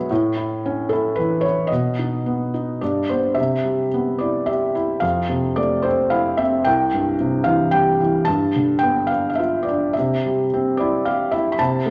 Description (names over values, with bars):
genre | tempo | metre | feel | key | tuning
classical, lyrical solo piano | 110 BPM | 3/4 | rubato | C major from 3.4 s | A4 = 439 Hz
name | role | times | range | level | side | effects
felt-muted upright piano | solo | 0.0-11.9 s | C2 to B5 | -20 LUFS | equal | none
room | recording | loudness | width
moderate recital hall reverb, RT60 1.4 s | none | -20 LUFS | mono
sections
0.0-3.4 A section; 3.4-11.9 B section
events
none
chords
0.1 A; 1.7 B; 2.8 G; 3.4 Cmaj7; 5.0 Fmaj7; 6.7 C; 8.3 G7; 10.0 C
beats
| 0.10 0.63 1.17 | 1.71 2.25 2.82 | 3.38 3.93 4.49 | 5.04 5.58 6.12 | 6.66 7.20 7.74 | 8.28 8.82 9.39 | 9.96 10.52 11.06 | 11.60